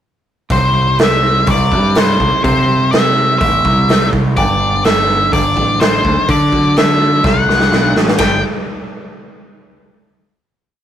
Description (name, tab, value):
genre	quiet-loud alternative rock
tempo	125 BPM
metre	4/4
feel	straight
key	G major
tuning	A4 = 440 Hz
part	octave-fuzz lead guitar	melody	0.5-8.4 s	C5 to G5	-15 LUFS	left 1 dB	distortion
part	twelve-string electric guitar	arpeggios	0.5-8.4 s	G2 to E4	-22 LUFS	right 5 dB	none
part	growling picked electric bass	bass	0.5-8.4 s	G1 to D3	-16 LUFS	equal	overdrive
part	raw garage drum kit	drums	0.5-8.3 s	hi-hat, kick drum, ride cymbal, snare drum	-16 LUFS	equal	none
room	light reverb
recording	rough rehearsal-room recording, warm saturation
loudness	-10 LUFS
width	side -10 dB against mid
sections	0.5-8.2 verse; 8.2-10.1 final chord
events	drum fill 7.2-8.2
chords	0.5 C; 4.4 G; 6.0 D; 8.2 G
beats	| 0.50 0.99 1.47 1.96 | 2.44 2.93 3.41 3.89 | 4.37 4.85 5.33 5.80 | 6.28 6.76 7.24 7.71 | 8.19